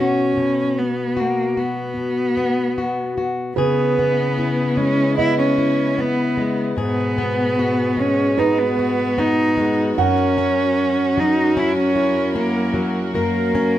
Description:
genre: acoustic folk-pop ballad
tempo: 75 BPM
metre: 4/4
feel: straight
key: unclear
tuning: A4 = 441 Hz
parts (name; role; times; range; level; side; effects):
- dark cello; melody; 0.0-13.8 s; A#3 to E4; -20 LUFS; right 1 dB; none
- fingerpicked plugged-in steel-string acoustic guitar; accompaniment; 0.0-13.8 s; F#2 to A#4; -21 LUFS; left 3 dB; none
- warm chamber string section; sustained chords; 3.6-13.8 s; B2 to A#4; -28 LUFS; right 2 dB; none
- felt-muted upright piano; arpeggios; 3.6-11.7 s; B4 to F#5; -25 LUFS; right 10 dB; none
room: light reverb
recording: none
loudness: -17 LUFS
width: side -12 dB against mid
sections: 0.0-3.6 A section; 3.6-13.8 B section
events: none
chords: 0.0 F#sus4/B; 3.6 C#m7; 6.8 G#m7; 10.0 F#7

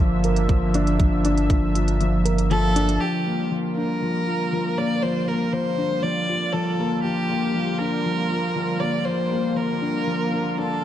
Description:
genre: piano and strings electronica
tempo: 119 BPM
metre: 4/4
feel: straight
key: G dorian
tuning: A4 = 440 Hz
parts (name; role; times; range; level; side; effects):
- lush unison pad; sustained chords; 0.0-10.8 s; D3 to E5; -30 LUFS; right 2 dB; chorus, sidechain pumping
- felt-muted upright piano; riff; 0.0-10.8 s; F3 to Bb4; -23 LUFS; left 1 dB; none
- warm sub bass; bass; 0.0-3.0 s; G1; -23 LUFS; equal; tube saturation, sidechain pumping
- electronic hi-hat; drums; 0.2-3.0 s; none; -34 LUFS; right 2 dB; low-pass filter on hats
- electronic kick drum; drums; 0.5-1.6 s; none; -19 LUFS; equal; none
- dark violin; melody; 2.5-10.8 s; G4 to D5; -26 LUFS; equal; none
room: moderate lush hall reverb, RT60 2.0 s, small room reverb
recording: dark, warm production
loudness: -20 LUFS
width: side -11 dB against mid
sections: 0.0-3.0 A section; 3.0-10.8 B section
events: kick drops out 2.0-3.0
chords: 0.0 Bb/G; 3.0 Gm7

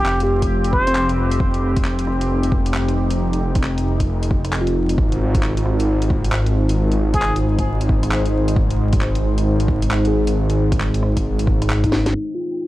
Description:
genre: future garage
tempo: 134 BPM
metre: 4/4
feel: swing 63% on 16ths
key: unclear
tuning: A4 = 442 Hz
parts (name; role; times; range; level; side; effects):
- trumpet with plunger mute; melody; 0.0-1.1, 7.1-7.4 s; G4 to C5; -25 LUFS; equal; analog delay
- deep dark ambient pad; sustained chords; 0.0-12.7 s; F3 to C5; -25 LUFS; equal; chorus, built-in reverb, sidechain pumping
- swelling detuned saw bass; bass; 0.0-12.1 s; F1 to Ab1; -19 LUFS; equal; sidechain pumping
- garage drum kit; drums; 0.1-12.1 s; handclaps, hi-hat, rim click, snare drum; -27 LUFS; equal; studio reverb
- mellow tine electric piano; accompaniment; 0.2-12.7 s; C4 to Ab4; -27 LUFS; left 1 dB; vintage 12-bit sampler grit, sidechain pumping, tape echo
- electronic kick drum; drums; 0.4-11.9 s; none; -21 LUFS; equal; overdrive, studio reverb
- flickering grainy texture; texture; 12.4-12.7 s; G5; -59 LUFS; right 3 dB; built-in reverb
room: light reverb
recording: vinyl crackle, low-pass filter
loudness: -16 LUFS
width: side -16 dB against mid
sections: 0.0-12.1 A section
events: drum fill 11.9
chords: 0.0 Fsus2; 5.0 Ab; 12.1 Fsus2

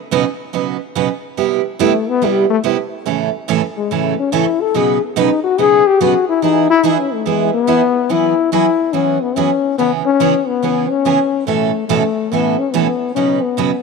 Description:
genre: country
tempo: 142 BPM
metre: 4/4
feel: swing 66% on 8ths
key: E major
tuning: A4 = 440 Hz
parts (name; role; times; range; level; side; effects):
- picked steel-string acoustic guitar; accompaniment; 0.1-13.7 s; A2 to B4; -17 LUFS; right 13 dB; none
- breathy trombone; melody; 1.8-13.8 s; G3 to A4; -15 LUFS; left 8 dB; none
room: moderate plate reverb, RT60 2.9 s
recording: 1960s-style stereo with parts hard left and right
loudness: -13 LUFS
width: side -4 dB against mid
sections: 0.0-8.1 A section; 8.1-13.8 B section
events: trombone solo 0.0-8.1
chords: 0.0 Badd9; 1.4 Cmaj7; 3.1 A; 4.7 Badd9; 6.4 E; 8.1 Eadd9; 9.8 C#m7; 11.5 Aadd9; 13.2 Badd9

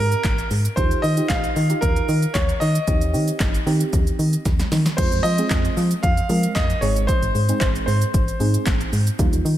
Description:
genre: dance-pop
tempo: 114 BPM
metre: 4/4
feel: straight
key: F minor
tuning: A4 = 441 Hz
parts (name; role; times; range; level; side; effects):
- clear grand piano; melody; 0.0-8.9 s; Bb4 to F5; -25 LUFS; equal; ping-pong delay
- soft round pluck; accompaniment; 0.0-9.4 s; G3 to Bb4; -28 LUFS; right 3 dB; chorus, sidechain pumping, slapback echo
- solid FM bass; bass; 0.0-9.6 s; G1 to F3; -21 LUFS; equal; sidechain pumping
- deep house drum kit; drums; 0.1-9.6 s; crash cymbal, handclaps, hi-hat, kick drum, shaker, snare drum; -22 LUFS; equal; none
room: light reverb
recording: none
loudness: -18 LUFS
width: side -12 dB against mid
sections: 0.0-5.0 A section; 5.0-9.6 B section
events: drum fill 4.5-5.0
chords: 0.0 N.C.; 0.8 Ebadd9; 2.9 Cm; 5.0 Fm; 6.8 Ab

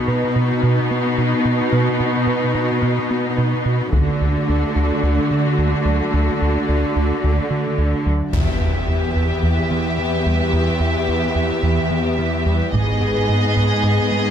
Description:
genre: cinematic, hybrid orchestral and electronic film score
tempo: 109 BPM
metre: 4/4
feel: straight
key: unclear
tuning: A4 = 440 Hz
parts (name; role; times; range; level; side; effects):
- warm symphonic viola section; accompaniment; 0.0-14.3 s; A3 to F#4; -26 LUFS; left 1 dB; none
- airy breathy pad; sustained chords; 0.0-14.3 s; A3 to D5; -26 LUFS; left 2 dB; chorus
- rich symphonic cello section; bass; 0.0-14.3 s; E2 to D3; -21 LUFS; right 1 dB; none
- thumb-piano-like synth pluck; arpeggios; 0.1-14.3 s; D3 to B4; -29 LUFS; right 2 dB; chorus, ping-pong delay
- rubbery square bass; riff; 0.1-14.3 s; D2 to B3; -21 LUFS; right 1 dB; none
- taiko ensemble; drums; 3.9-5.0, 8.3-9.4, 12.7-13.8 s; none; -25 LUFS; left 1 dB; none
- warm symphonic violin section; melody; 8.3-14.3 s; D#5 to E5; -26 LUFS; left 2 dB; none
- rich symphonic violin section; second line; 8.3-14.3 s; G4 to G#4; -27 LUFS; equal; none
- mellow French horn section; sustained chords; 8.3-14.3 s; B3 to G#4; -27 LUFS; left 4 dB; none
- warm symphonic double bass section; bass; 8.3-8.8, 12.7-13.2 s; E1 to G#1; -26 LUFS; right 2 dB; none
- impact; sound effects; 8.3-10.5 s; none; -27 LUFS; left 1 dB; none
room: light reverb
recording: close, detailed microphones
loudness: -16 LUFS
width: side -9 dB against mid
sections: 0.0-8.3 A section; 8.3-14.3 B section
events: impact 8.3-10.5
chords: 0.0 B; 3.9 D; 8.3 Em; 12.7 G#m

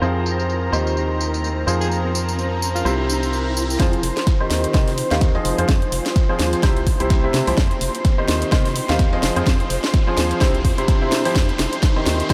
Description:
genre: piano house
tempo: 127 BPM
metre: 4/4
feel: swing 57% on 16ths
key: F minor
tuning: A4 = 440 Hz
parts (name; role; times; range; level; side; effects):
- clear alto saxophone; melody; 0.0-2.9 s; F4 to Ab4; -36 LUFS; equal; none
- analog string pad; sustained chords; 0.0-12.3 s; Bb4 to C6; -32 LUFS; equal; ensemble chorus, sidechain pumping
- bright grand piano; riff; 0.0-12.3 s; C3 to F5; -25 LUFS; equal; sidechain pumping, low-pass filter, analog delay
- organ-like FM bass; bass; 0.0-12.3 s; F1 to C3; -26 LUFS; equal; sidechain pumping
- house drum kit; drums; 0.0-12.3 s; hi-hat, snare drum, tambourine; -28 LUFS; equal; overdrive
- riser; sound effects; 1.3-12.3 s; none; -35 LUFS; equal; none
- warbly tape-like pad; texture; 0.0-12.3 s; Eb4 to Ab5; -32 LUFS; equal; none
- dusty soul sampler-style drum kit; drums; 3.8-12.3 s; hi-hat, snare drum; -40 LUFS; equal; none
- electronic kick drum; drums; 3.8-12.3 s; none; -20 LUFS; equal; overdrive
room: moderate huge ambient reverb, RT60 7.7 s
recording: dreamy mix soaked in reverb, low-pass filter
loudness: -19 LUFS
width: mono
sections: 0.0-3.8 A section; 3.8-12.3 B section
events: filter sweep 0.0-3.8; riser 1.3-3.8; build-up 3.8-12.3; drum fill 3.8-12.3; filter sweep on analog synth pad 3.8-12.3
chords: 0.0 Fm; 0.7 Cm/Eb; 1.7 Fm; 2.9 C; 3.8 Fm; 4.5 Cm/Eb; 5.5 Fm; 6.6 C; 7.6 Fm; 8.3 Cm/Eb; 9.2 Fm; 10.4 C; 11.4 Fm

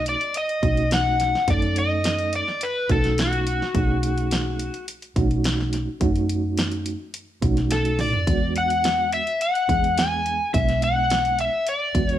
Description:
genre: straight-eighth soul blues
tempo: 106 BPM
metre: 4/4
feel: straight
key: B mixolydian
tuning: A4 = 438 Hz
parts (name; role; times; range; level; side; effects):
- overdriven slide guitar; melody; 0.0-12.2 s; F#4 to G#5; -22 LUFS; left 2 dB; none
- reed electric piano; accompaniment; 0.0-12.2 s; G#3 to A4; -27 LUFS; right 4 dB; fast tremolo
- vintage muted fingered electric bass; bass; 0.0-12.2 s; B1 to F#2; -26 LUFS; equal; none
- house drum kit; drums; 0.1-12.2 s; hi-hat, kick drum, snare drum, toms; -25 LUFS; equal; none
room: moderate large studio reverb, RT60 1.2 s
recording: band playing live in one room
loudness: -20 LUFS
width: side -11 dB against mid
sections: 0.0-12.2 A section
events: drum fill 7.7-8.3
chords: 0.0 B7; 8.3 E7

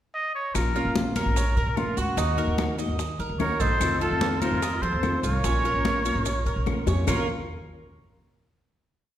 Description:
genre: latin, Cuban son and guajira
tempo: 147 BPM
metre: 4/4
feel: straight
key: Bb harmonic minor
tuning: A4 = 440 Hz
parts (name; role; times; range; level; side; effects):
- trumpet with straight mute; melody; 0.1-7.3 s; F4 to Eb5; -29 LUFS; equal; none
- fingerpicked plugged-in steel-string acoustic guitar; accompaniment; 0.5-7.2 s; Bb2 to Gb4; -31 LUFS; left 2 dB; none
- upright bass; bass; 0.5-7.3 s; Bb1 to F3; -27 LUFS; equal; none
- congas; percussion; 0.5-7.2 s; none; -32 LUFS; left 2 dB; none
- bongos; percussion; 0.6-7.2 s; none; -36 LUFS; left 5 dB; none
- claves; percussion; 0.6-7.2 s; none; -40 LUFS; left 8 dB; none
- maracas; percussion; 0.6-7.2 s; none; -40 LUFS; right 8 dB; none
- Cuban tres; arpeggios; 0.8-7.3 s; Bb3 to Eb5; -32 LUFS; right 4 dB; none
- breathy bright jazz flute; second line; 3.4-7.3 s; F4 to Bb4; -34 LUFS; right 4 dB; none
room: wet recital hall reverb, RT60 1.4 s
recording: recorded in a church or concert hall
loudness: -23 LUFS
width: side -11 dB against mid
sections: 0.0-0.6 pickup bar; 0.6-7.1 A section; 7.1-8.7 final chord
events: drum fill 6.9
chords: 0.0 N.C.; 0.6 Bbm; 2.2 Ebm; 3.8 F7; 5.4 Bbm; 7.1 Bb5

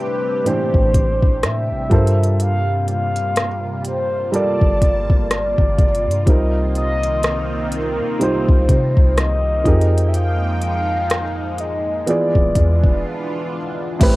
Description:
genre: contemporary R&B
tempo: 62 BPM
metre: 4/4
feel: swing 58% on 16ths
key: unclear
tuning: A4 = 441 Hz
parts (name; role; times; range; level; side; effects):
- mellow horn-like synth lead; melody; 0.0-13.5 s; Bb4 to F5; -22 LUFS; equal; chorus, cassette tape, tape echo
- dark concert grand piano; accompaniment; 0.0-14.2 s; A2 to D5; -23 LUFS; right 2 dB; cassette tape
- lush unison pad; sustained chords; 0.0-14.2 s; C3 to A5; -27 LUFS; equal; chorus, phaser, cassette tape
- smooth R&B drum kit; drums; 0.5-14.2 s; crash cymbal, hi-hat, kick drum, rim click; -16 LUFS; equal; none
- soft 808-style bass; bass; 0.7-14.2 s; D1 to C3; -20 LUFS; equal; none
room: little or no reverb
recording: home recording on cassette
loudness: -15 LUFS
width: side -19 dB against mid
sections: 0.0-14.0 A section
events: break 13.0-14.0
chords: 0.0 Am11; 1.9 Gm11; 6.3 Cm7; 9.7 Fm11; 12.1 E7b9

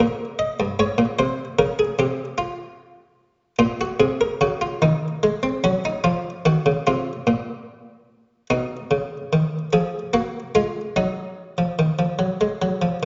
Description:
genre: classical, baroque-style two-part invention for harpsichord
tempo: 49 BPM (dotted quarters)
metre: 6/8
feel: straight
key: Bb minor, Eb minor from 8.5 s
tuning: A4 = 443 Hz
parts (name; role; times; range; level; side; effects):
- buff-stop harpsichord; solo; 0.0-13.1 s; G2 to Eb5; -22 LUFS; equal; none
room: wet recital hall reverb, RT60 1.6 s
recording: nothing above 7.8 kHz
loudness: -22 LUFS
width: mono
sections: 0.0-8.5 A section; 8.5-13.1 B section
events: none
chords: 0.0 Bbm; 1.2 C5; 2.4 F5/C; 3.6 Bbm; 4.8 Ebm; 6.0 F5; 7.3 Bb5; 8.5 Badd9; 9.7 Bb5/F; 11.0 Ebm

